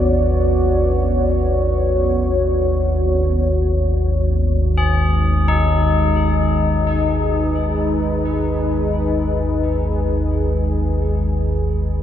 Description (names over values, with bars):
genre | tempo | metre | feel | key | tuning
dark ambient drone | free time | none | none | G# minor | A4 = 439 Hz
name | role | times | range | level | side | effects
dark analog pad | sustained chords | 0.0-12.0 s | G#3 to D5 | -20 LUFS | equal | chorus
deep rumbling drone | drone | 0.0-12.0 s | G#1 to D#2 | -18 LUFS | equal | built-in reverb, phaser, lush chorus
tubular bells | arpeggios | 4.8-11.3 s | D#4 to G#4 | -24 LUFS | left 6 dB | tape echo
room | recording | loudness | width
wet cathedral reverb, RT60 6.9 s | none | -16 LUFS | side -10 dB against mid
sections
0.0-12.0 A section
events
fade-out on analog synth pad 0.0-12.0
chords
0.0 Bm; 3.9 G#m; 11.3 Bm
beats
free time